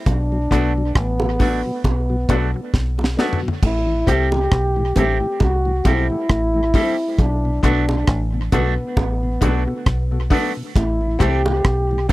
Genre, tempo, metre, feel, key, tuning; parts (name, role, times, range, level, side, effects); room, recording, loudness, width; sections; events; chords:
roots reggae; 67 BPM; 4/4; swing 56% on 16ths; A dorian; A4 = 441 Hz
mellow trombone; melody; 0.1-12.1 s; B3 to G4; -23 LUFS; equal; tape echo
deep dub fingered electric bass; bass; 0.1-12.1 s; A1 to C2; -20 LUFS; equal
deep reggae drum kit; drums; 0.1-12.1 s; crash cymbal, hi-hat, kick drum, rim click, snare drum, toms; -19 LUFS; equal
bongos; percussion; 0.1-12.1 s; -27 LUFS; right 4 dB
mellow tonewheel organ; accompaniment; 0.3-12.1 s; A2 to D4; -28 LUFS; left 1 dB; slow rotary speaker, tape echo
electric guitar with an envelope filter; accompaniment; 0.5-12.1 s; E3 to G4; -27 LUFS; right 7 dB; tape echo
bright upright piano; stabs; 0.5-12.1 s; B3 to A4; -25 LUFS; left 5 dB
little or no reverb; dry, close 1970s-style studio recording; -16 LUFS; side -18 dB against mid
0.0-3.6 A section; 3.6-12.1 B section
drum fill 2.7-3.6
0.1 Bm7; 3.6 Am7; 7.2 Bm7; 10.8 Am7